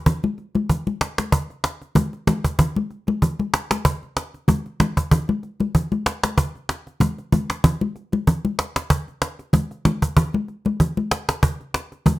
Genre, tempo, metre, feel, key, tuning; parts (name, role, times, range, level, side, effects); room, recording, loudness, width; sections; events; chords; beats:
afrobeats; 95 BPM; 4/4; swing 55% on 16ths
cajon; drums; 0.1-12.2 s; -20 LUFS; equal
congas; percussion; 0.1-12.2 s; -20 LUFS; left 1 dB
moderate studio reverb, RT60 0.6 s; -20 LUFS; side -17 dB against mid
0.0-7.6 A section; 7.6-12.2 B section
drum fill 7.0-7.6
| 0.06 0.69 1.32 1.96 | 2.59 3.22 3.85 4.48 | 5.11 5.75 6.38 7.01 | 7.64 8.27 8.90 9.54 | 10.17 10.80 11.43 12.06